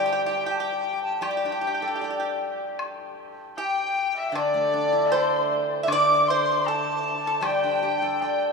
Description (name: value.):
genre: chinese traditional, Chinese chamber ensemble.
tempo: 78 BPM.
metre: 2/4.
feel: straight.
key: G zhi mode.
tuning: A4 = 440 Hz.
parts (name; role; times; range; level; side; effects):
mellow hollow dizi; melody; 0.0-8.5 s; D5 to D6; -27 LUFS; left 1 dB; none.
pipa; second line; 0.0-8.5 s; D4 to E5; -30 LUFS; right 2 dB; none.
rich erhu; second line; 0.0-8.5 s; D5 to D6; -29 LUFS; left 3 dB; none.
steel-string zither; accompaniment; 0.0-8.5 s; D3 to D5; -27 LUFS; equal; none.
woodblock; percussion; 1.2-8.4 s; none; -39 LUFS; left 4 dB; none.
room: wet cathedral reverb, RT60 6.1 s.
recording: in a vast, echoing space, small room ambience.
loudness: -22 LUFS.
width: side -4 dB against mid.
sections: 0.0-2.8 A section; 2.8-8.5 B section.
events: none.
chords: none.